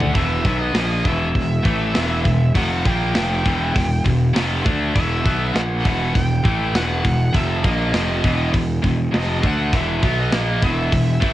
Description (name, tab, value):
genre	heavy metal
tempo	100 BPM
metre	4/4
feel	straight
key	unclear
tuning	A4 = 440 Hz
part	high-gain lead guitar	melody	0.0-11.3 s	D#5 to G5	-27 LUFS	right 2 dB	distortion, cassette tape, analog delay
part	high-gain distorted guitar	riff	0.0-11.3 s	E2 to D4	-21 LUFS	equal	distortion, cassette tape
part	fuzz picked electric bass	bass	0.0-11.3 s	E1 to D2	-22 LUFS	equal	overdrive
part	tight metal drum kit	drums	0.0-11.3 s	hi-hat, kick drum, snare drum, toms	-22 LUFS	equal	cassette tape
room	studio reverb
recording	home recording on cassette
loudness	-16 LUFS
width	side -14 dB against mid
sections	0.2-11.3 A section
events	drum fill 0.0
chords	0.2 E5